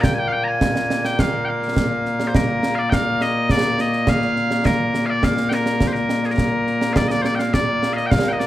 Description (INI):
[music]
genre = scottish traditional, Scottish pipe music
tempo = 104 BPM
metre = 4/4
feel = straight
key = Bb mixolydian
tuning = A4 = 441 Hz
[part]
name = loud bright bagpipes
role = melody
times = 0.0-8.5 s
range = Bb2 to Bb5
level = -19 LUFS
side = left 1 dB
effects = none
[part]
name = concert snare drum and concert bass drum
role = drums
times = 0.0-8.5 s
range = none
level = -21 LUFS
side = right 1 dB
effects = none
[sound]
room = light reverb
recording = none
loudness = -17 LUFS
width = side -14 dB against mid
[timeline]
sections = 0.0-7.0 A section; 7.0-8.5 B section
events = none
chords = none